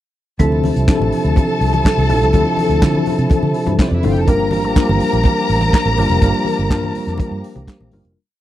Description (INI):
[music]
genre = disco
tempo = 124 BPM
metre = 4/4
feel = straight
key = D minor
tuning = A4 = 439 Hz
[part]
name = warm studio string section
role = second line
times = 0.4-7.9 s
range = C4 to Bb5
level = -20 LUFS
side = equal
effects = none
[part]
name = mellow tine electric piano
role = accompaniment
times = 0.4-8.2 s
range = F3 to Bb4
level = -19 LUFS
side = left 2 dB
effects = medium stereo tremolo
[part]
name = percussive tonewheel organ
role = sustained chords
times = 0.4-8.1 s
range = C3 to G4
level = -24 LUFS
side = right 2 dB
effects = chorus vibrato, slow rotary speaker
[part]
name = vintage muted fingered electric bass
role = bass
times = 0.4-8.1 s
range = F1 to D3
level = -18 LUFS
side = equal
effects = none
[part]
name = warm soul drum kit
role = drums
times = 0.4-8.2 s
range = handclaps, hi-hat, kick drum, snare drum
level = -14 LUFS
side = equal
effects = none
[part]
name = congas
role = percussion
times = 0.4-8.0 s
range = none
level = -26 LUFS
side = left 3 dB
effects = none
[sound]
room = little or no reverb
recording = dry, close 1970s-style studio recording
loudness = -13 LUFS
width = side -13 dB against mid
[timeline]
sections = 0.4-8.2 groove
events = fade-out 6.2-8.2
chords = 0.4 Dm9; 4.3 Gm7